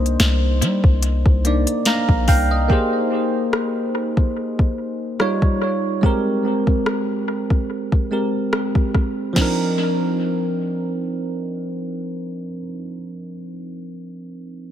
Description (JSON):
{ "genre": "contemporary R&B", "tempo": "72 BPM", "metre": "4/4", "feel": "swing 54% on 16ths", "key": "C minor", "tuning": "A4 = 440 Hz", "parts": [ { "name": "bell-like tine electric piano", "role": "accompaniment", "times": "0.0-14.7 s", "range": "F3 to Bb5", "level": "-21 LUFS", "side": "right 1 dB", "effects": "analog chorus, tape echo" }, { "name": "warm 808-style bass", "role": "bass", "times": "0.0-2.7 s", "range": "Bb1 to G3", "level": "-18 LUFS", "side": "equal", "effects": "none" }, { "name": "smooth R&B drum kit", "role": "drums", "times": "0.1-9.6 s", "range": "crash cymbal, hi-hat, kick drum, rim click, snare drum", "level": "-19 LUFS", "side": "equal", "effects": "overdrive, tape echo" } ], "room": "light reverb", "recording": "echo-heavy mix", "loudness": "-17 LUFS", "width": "side -10 dB against mid", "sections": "0.0-2.7 A section; 2.7-9.4 B section; 9.4-12.7 C section", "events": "tine electric piano fill 1.4-2.7", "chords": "0.0 Cm9; 2.7 Bb13sus4; 5.2 Eb9; 6.0 Abmaj9; 9.4 Cm11", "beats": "0.20 1.03 1.86 | 2.70 3.53 4.36 5.20 | 6.03 6.86 7.70 8.53 | 9.36 10.20 11.03 11.86" }